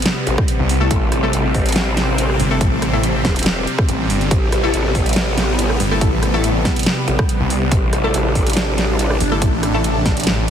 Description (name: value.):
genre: heavy wobble dubstep.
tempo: 141 BPM.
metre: 4/4.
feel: half-time.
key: A minor.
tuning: A4 = 441 Hz.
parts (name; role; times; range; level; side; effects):
supersaw pad; sustained chords; 0.0-10.5 s; C3 to D4; -21 LUFS; equal; phaser, sidechain pumping.
dubstep drum kit; drums; 0.0-10.4 s; hi-hat, rim click, snare drum; -21 LUFS; right 1 dB; small room ambience.
growl bass; bass; 0.3-9.2 s; E1 to A1; -19 LUFS; equal; chorus, overdrive.
electronic kick drum; drums; 0.4-10.1 s; none; -19 LUFS; equal; small room ambience.
snarling distorted saw bass; bass; 0.6-10.5 s; G1 to C2; -18 LUFS; equal; distortion, overdrive.
orchestra-hit-like synth stab; stabs; 0.8-9.8 s; A3 to A4; -23 LUFS; left 3 dB; built-in reverb, dub echo.
room: light reverb, digital ambience.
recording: heavily compressed radio sound.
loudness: -14 LUFS.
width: side -8 dB against mid.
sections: 0.0-10.5 A section.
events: none.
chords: 0.0 Amadd9.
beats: 0.06 0.48 | 0.91 1.33 1.76 2.18 | 2.61 3.04 3.46 3.89 | 4.31 4.74 5.16 5.59 | 6.01 6.44 6.86 7.29 | 7.72 8.14 8.57 8.99 | 9.42 9.84 10.27.